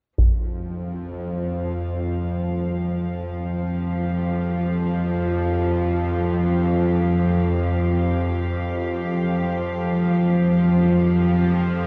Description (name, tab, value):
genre	ambient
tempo	free time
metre	none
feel	none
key	unclear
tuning	A4 = 441 Hz
part	rich studio cello section	sustained chords	0.2-11.9 s	F3 to F5	-36 LUFS	equal	shimmer reverb
part	bowed-like drone	drone	0.4-11.9 s	F2 to F3	-22 LUFS	equal	built-in reverb
room	moderate huge ambient reverb, RT60 8.0 s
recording	dark, warm production, lossy compression artefacts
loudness	-22 LUFS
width	mono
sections	0.2-11.9 A section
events	fade-in on cello section 0.2-11.9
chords	0.2 F5